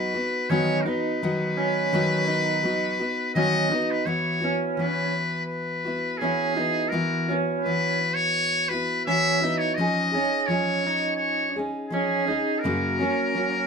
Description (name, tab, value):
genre	acoustic folk duo or small band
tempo	84 BPM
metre	4/4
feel	straight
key	unclear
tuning	A4 = 441 Hz
part	trumpet with metal mute	melody	0.0-13.7 s	G#4 to E5	-25 LUFS	left 2 dB	none
part	picked steel-string acoustic guitar	accompaniment	0.0-13.7 s	F#2 to G#4	-27 LUFS	left 1 dB	none
part	electric guitar at the edge of break-up	arpeggios	0.0-13.7 s	C#4 to D#4	-28 LUFS	right 5 dB	tremolo
room	moderate small room reverb, RT60 0.5 s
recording	minimal, uncompressed stereo recording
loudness	-22 LUFS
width	side -5 dB against mid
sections	0.0-4.1 A section; 4.1-13.7 B section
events	none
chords	0.0 B/D#; 4.1 Esus2; 9.8 C#add9/E#; 12.6 F#